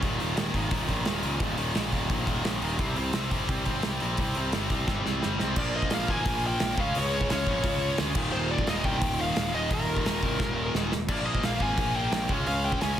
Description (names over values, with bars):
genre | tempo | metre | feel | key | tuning
punk rock | 174 BPM | 4/4 | straight | Eb major from 5.6 s | A4 = 440 Hz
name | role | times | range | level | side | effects
tight distorted guitar | riff | 0.0-13.0 s | Eb2 to Db4 | -29 LUFS | equal | distortion
fuzz picked electric bass | bass | 0.0-13.0 s | Eb1 to D2 | -32 LUFS | equal | overdrive
loose indie drum kit | drums | 0.0-12.9 s | crash cymbal, hi-hat, kick drum, snare drum | -30 LUFS | equal | none
high-gain lead guitar | melody | 5.6-13.0 s | Bb4 to Ab5 | -31 LUFS | left 1 dB | distortion
room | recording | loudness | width
light reverb | dense, heavily limited modern master | -25 LUFS | side -10 dB against mid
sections
0.0-5.6 A section; 5.6-13.0 B section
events
drum fill 4.9-5.6, 10.4-11.1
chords
0.0 Eb5; 2.8 C5; 5.6 Bb5; 6.8 Db5; 8.2 Eb5; 11.1 Bb5; 12.3 Db5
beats
| 0.03 0.38 0.72 1.07 | 1.42 1.76 2.11 2.46 | 2.80 3.15 3.50 3.84 | 4.19 4.54 4.88 5.23 | 5.57 5.92 6.26 6.61 | 6.95 7.30 7.64 7.99 | 8.33 8.68 9.02 9.37 | 9.71 10.06 10.40 10.75 | 11.10 11.44 11.79 12.13 | 12.48 12.82